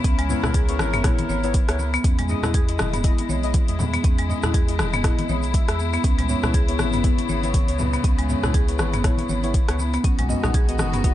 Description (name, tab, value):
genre	afro house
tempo	120 BPM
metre	4/4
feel	swing 57% on 16ths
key	C# dorian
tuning	A4 = 440 Hz
part	rich chamber string section	sustained chords	0.0-11.1 s	C#3 to A#4	-30 LUFS	left 4 dB	sidechain pumping
part	marimba with medium hard mallets	arpeggios	0.0-11.1 s	G#3 to C#5	-27 LUFS	right 1 dB	sidechain pumping, digital delay
part	warm sub bass	bass	0.0-11.1 s	E1 to E2	-26 LUFS	equal	sidechain pumping
part	deep house drum kit	drums	0.0-11.1 s	hi-hat, rim click, toms	-29 LUFS	equal	overdrive
part	electronic kick drum	drums	0.0-11.1 s	none	-20 LUFS	equal	overdrive
part	congas	percussion	0.0-11.0 s	none	-31 LUFS	left 3 dB	none
part	egg shaker	percussion	0.0-11.1 s	none	-39 LUFS	right 5 dB	none
part	deep mellow chord stab	stabs	0.3-11.1 s	G#3 to E5	-30 LUFS	left 3 dB	chorus, phaser, sidechain pumping, digital delay
room	small room ambience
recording	dark, warm production, nothing above 10.5 kHz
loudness	-19 LUFS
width	side -13 dB against mid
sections	0.0-11.1 A section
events	none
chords	0.0 C#m7; 2.0 Emaj7; 6.0 C#m7; 10.0 B